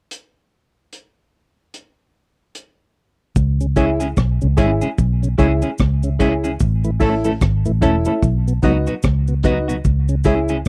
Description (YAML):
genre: roots reggae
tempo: 74 BPM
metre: 4/4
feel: swing 60% on 16ths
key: C# minor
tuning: A4 = 439 Hz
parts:
  - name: crunchy breakbeat drum kit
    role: drums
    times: 0.1-10.7 s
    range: hi-hat, kick drum, rim click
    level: -21 LUFS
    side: equal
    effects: none
  - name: vintage muted fingered electric bass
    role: bass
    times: 3.4-10.6 s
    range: E1 to C#2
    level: -20 LUFS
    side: equal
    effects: none
  - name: cabasa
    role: percussion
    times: 3.4-10.7 s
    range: none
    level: -42 LUFS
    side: equal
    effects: none
  - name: tonewheel organ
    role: accompaniment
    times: 3.6-10.6 s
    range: A2 to E4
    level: -25 LUFS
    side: equal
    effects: overdrive, slow rotary speaker
  - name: clean electric guitar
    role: accompaniment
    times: 3.8-10.6 s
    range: F#3 to A4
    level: -26 LUFS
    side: equal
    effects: none
  - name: dark upright piano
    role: stabs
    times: 3.8-10.5 s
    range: D#4 to E5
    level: -23 LUFS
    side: equal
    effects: none
room: little or no reverb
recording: dry, close 1970s-style studio recording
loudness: -18 LUFS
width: mono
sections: 0.1-3.4 A section; 3.4-10.7 B section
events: none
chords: 0.1 N.C.; 3.4 C#m; 6.6 A; 8.2 B; 9.9 C#m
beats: | 0.11 0.92 1.73 2.54 | 3.36 4.17 4.98 5.79 | 6.60 7.42 8.23 9.04 | 9.85 10.66